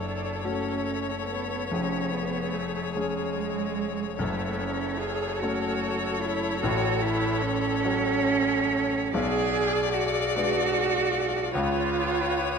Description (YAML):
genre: classical, slow romantic movement for piano quartet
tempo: 49 BPM (dotted quarters)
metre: 6/8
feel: uneven beats, rubato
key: F# minor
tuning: A4 = 442 Hz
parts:
  - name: rich violin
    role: melody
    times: 0.0-12.6 s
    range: C#5 to D5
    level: -32 LUFS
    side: left 9 dB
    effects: none
  - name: rich cello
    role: second line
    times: 0.0-12.6 s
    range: G#3 to G#4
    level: -28 LUFS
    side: right 6 dB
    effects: none
  - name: clear concert grand piano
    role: accompaniment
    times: 0.0-12.6 s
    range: E#1 to C#5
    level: -30 LUFS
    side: left 3 dB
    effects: none
  - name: clear viola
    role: accompaniment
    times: 0.0-12.6 s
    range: G#4 to B4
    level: -35 LUFS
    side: right 2 dB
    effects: none
room: moderate concert hall reverb, RT60 1.9 s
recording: close, detailed microphones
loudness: -24 LUFS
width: side -6 dB against mid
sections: 0.0-12.6 A section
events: none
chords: 0.0 F#m; 1.7 C#/E#; 4.2 F#m; 6.6 F#m/A; 9.1 G#m7b5/B; 11.5 C#7